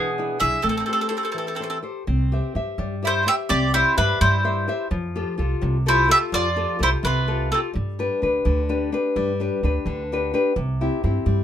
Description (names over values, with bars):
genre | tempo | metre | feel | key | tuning
italian folk, Italian serenade | 85 BPM (dotted quarters) | 6/8 | straight | C major | A4 = 440 Hz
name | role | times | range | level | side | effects
bowl-back mandolin | melody | 0.0-7.6 s | G#4 to E5 | -21 LUFS | equal | none
mandolin | second line | 0.0-7.6 s | B3 to G#4 | -27 LUFS | right 5 dB | none
nylon-string guitar | accompaniment | 0.0-11.4 s | B2 to E5 | -25 LUFS | left 3 dB | none
upright bass | bass | 0.0-11.4 s | A1 to E3 | -24 LUFS | right 1 dB | none
room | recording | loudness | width
light reverb | minimal, uncompressed stereo recording | -20 LUFS | side -10 dB against mid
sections
0.0-2.1 A section; 2.1-11.4 B section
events
break 1.4-2.1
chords
0.0 E7; 0.6 Am7; 2.1 C; 4.9 Fadd9; 7.7 G; 10.6 C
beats
| 0.64 1.36 | 2.07 2.79 | 3.50 4.20 | 4.90 5.61 | 6.32 7.03 | 7.74 8.45 | 9.15 9.86 | 10.56 11.26